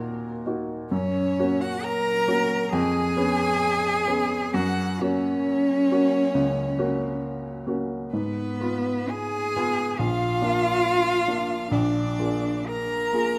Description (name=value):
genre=classical, slow romantic movement for piano trio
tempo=67 BPM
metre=4/4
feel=uneven beats, rubato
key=unclear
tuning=A4 = 443 Hz
part: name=rich violin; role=melody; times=0.0-13.4 s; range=Bb4 to Bb5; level=-33 LUFS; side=equal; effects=none
part: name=rich cello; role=second line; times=0.0-13.4 s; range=Bb3 to Bb4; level=-27 LUFS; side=equal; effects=none
part: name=warm baby grand piano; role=accompaniment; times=0.0-13.4 s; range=Bb1 to Ab4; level=-29 LUFS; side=equal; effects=none
room=moderate scoring stage reverb, RT60 1.9 s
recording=close, detailed microphones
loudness=-25 LUFS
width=mono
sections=0.0-13.4 A section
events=none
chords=0.0 Ebm; 0.9 Gb; 2.7 Db7/F; 4.5 Gb; 8.1 Fdim/Ab; 10.0 Bb; 11.7 Bb7